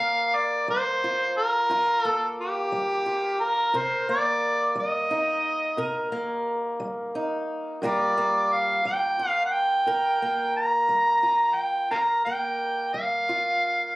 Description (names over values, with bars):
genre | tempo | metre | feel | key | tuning
acoustic country blues, solo or duo | 59 BPM (dotted quarters) | 12/8 | straight | G minor | A4 = 442 Hz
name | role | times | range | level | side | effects
overdriven harmonica | melody | 0.0-14.0 s | G4 to Bb5 | -22 LUFS | equal | none
fingerpicked swing-style acoustic guitar | accompaniment | 0.0-14.0 s | G2 to Bb4 | -30 LUFS | equal | none
room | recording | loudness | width
moderate small room reverb, RT60 0.5 s | recorded on a phone in the room, club reverb | -22 LUFS | side -21 dB against mid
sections
0.0-14.0 A section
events
none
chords
0.0 Gm7; 3.7 Cm7; 7.8 Gm7